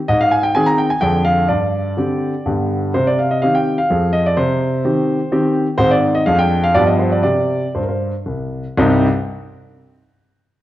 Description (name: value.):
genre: classical-period piano sonatina.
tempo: 116-130 BPM.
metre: 3/4.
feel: rubato.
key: C minor.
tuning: A4 = 441 Hz.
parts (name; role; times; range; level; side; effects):
warm grand piano; solo; 0.1-9.1 s; C2 to Bb5; -14 LUFS; equal; none.
room: wet recital hall reverb, RT60 1.3 s.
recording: worn, warbling old tape, cassette tape, warbly pitch drift.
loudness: -14 LUFS.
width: side -14 dB against mid.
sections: 0.0-8.8 A section; 8.8-10.3 B section.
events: none.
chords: 0.1 Ab; 1.0 Ddim/F; 1.5 Gsus4; 2.5 G; 3.0 Cm; 3.9 Fm; 4.4 Cm; 5.8 Ab; 6.3 Ddim/F; 6.7 G7; 7.2 C5; 8.8 Cm.